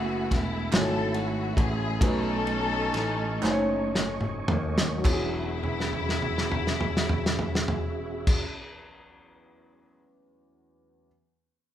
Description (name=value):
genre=slow gospel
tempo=34-50 BPM (dotted quarters)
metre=6/8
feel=straight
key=E major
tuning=A4 = 440 Hz
part: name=rich symphonic string section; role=melody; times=0.0-8.5 s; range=B3 to A4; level=-32 LUFS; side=left 3 dB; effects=none
part: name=warm upright piano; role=accompaniment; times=0.0-11.1 s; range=E2 to G#5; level=-31 LUFS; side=equal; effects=none
part: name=mellow tonewheel organ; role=sustained chords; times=0.0-8.5 s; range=A3 to C#6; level=-35 LUFS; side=right 4 dB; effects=slow rotary speaker, chorus vibrato
part: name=picked electric bass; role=bass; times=0.0-8.5 s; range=E1 to D#2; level=-33 LUFS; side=left 1 dB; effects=none
part: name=warm soul drum kit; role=drums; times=0.3-10.0 s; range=crash cymbal, kick drum, ride cymbal, snare drum, toms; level=-27 LUFS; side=equal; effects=none
part: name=group handclap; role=percussion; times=0.7-8.5 s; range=none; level=-40 LUFS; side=right 5 dB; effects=none
room=moderate large studio reverb, RT60 1.2 s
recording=band playing live in one room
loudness=-24 LUFS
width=side -11 dB against mid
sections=0.0-5.0 A section; 5.0-8.6 B section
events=slowing down 0.0-5.0; drum fill 3.4-5.0, 5.6-8.3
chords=0.0 F#m11; 2.0 B13; 5.0 E69